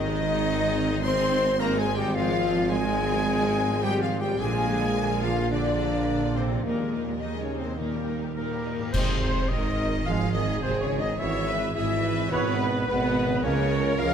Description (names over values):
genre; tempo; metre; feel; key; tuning
cinematic, heroic adventure film score; 107 BPM; 4/4; straight; Ab major; A4 = 441 Hz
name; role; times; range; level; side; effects
warm studio violin section; melody; 0.0-14.1 s; Bb4 to C6; -36 LUFS; left 4 dB; none
rich symphonic violin section; second line; 0.0-14.1 s; Bb4 to C6; -37 LUFS; left 3 dB; none
silver concert flute; second line; 0.0-14.1 s; Bb4 to C6; -34 LUFS; left 2 dB; none
warm clarinet; second line; 0.0-14.1 s; Bb3 to F5; -36 LUFS; left 1 dB; none
clear symphonic viola section; accompaniment; 0.0-14.1 s; D3 to Eb5; -34 LUFS; right 2 dB; none
dark trombone section; sustained chords; 0.0-13.6 s; D3 to C4; -37 LUFS; right 3 dB; none
mellow French horn section; sustained chords; 0.0-14.1 s; Bb3 to C5; -30 LUFS; left 4 dB; none
concert harp; arpeggios; 0.0-14.1 s; Ab2 to C6; -37 LUFS; left 9 dB; none
rich symphonic cello section; bass; 0.0-14.1 s; Bb2 to C4; -32 LUFS; right 4 dB; none
rich symphonic double bass section; bass; 0.0-14.1 s; Ab1 to Eb2; -31 LUFS; right 4 dB; none
warm tuba; bass; 0.0-14.1 s; Ab1 to Eb2; -32 LUFS; right 3 dB; none
cymbal swell, clash cymbals and concert bass drum; percussion; 6.6-10.0 s; none; -31 LUFS; equal; none
warm oboe; second line; 8.4-14.1 s; Bb4 to F5; -35 LUFS; right 2 dB; none
room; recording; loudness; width
moderate concert hall reverb, RT60 2.2 s; none; -23 LUFS; side -8 dB against mid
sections
0.0-8.9 A section; 8.9-14.1 B section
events
band accent 8.9-9.5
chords
0.0 Ab; 2.2 Fm/Ab; 4.4 Bb7; 6.6 Ebsus4; 7.8 Eb; 8.9 Ab; 11.2 E/G#; 13.4 Db6